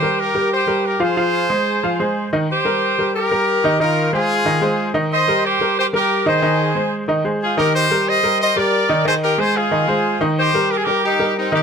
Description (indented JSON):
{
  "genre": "latin",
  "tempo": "182 BPM",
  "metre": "4/4",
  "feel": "straight",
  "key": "C minor",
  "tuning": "A4 = 440 Hz",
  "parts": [
    { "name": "brilliant horn section", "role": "melody", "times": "0.0-11.6 s", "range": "C4 to Eb5", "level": "-17 LUFS", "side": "equal", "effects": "none" },
    { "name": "clear upright piano", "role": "accompaniment", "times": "0.0-11.6 s", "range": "Eb3 to F5", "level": "-19 LUFS", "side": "equal", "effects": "none" }
  ],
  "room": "light reverb",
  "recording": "close, detailed microphones",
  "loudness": "-15 LUFS",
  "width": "side -6 dB against mid",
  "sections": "0.0-2.5 A section; 2.5-11.6 A section",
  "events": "none",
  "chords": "0.0 C7(no3); 1.2 Fm7; 2.5 Cm7; 3.8 Fm7; 5.1 Cm7; 6.4 Fm7 (rootless); 7.7 Cm7; 9.1 Fm7; 10.4 Cm7",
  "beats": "0.18 0.51 0.84 | 1.17 1.49 1.82 2.15 | 2.48 2.81 3.14 3.47 | 3.80 4.12 4.45 4.78 | 5.11 5.44 5.77 6.10 | 6.43 6.75 7.08 7.41 | 7.74 8.07 8.40 8.73 | 9.05 9.38 9.71 10.04 | 10.37 10.70 11.03 11.36"
}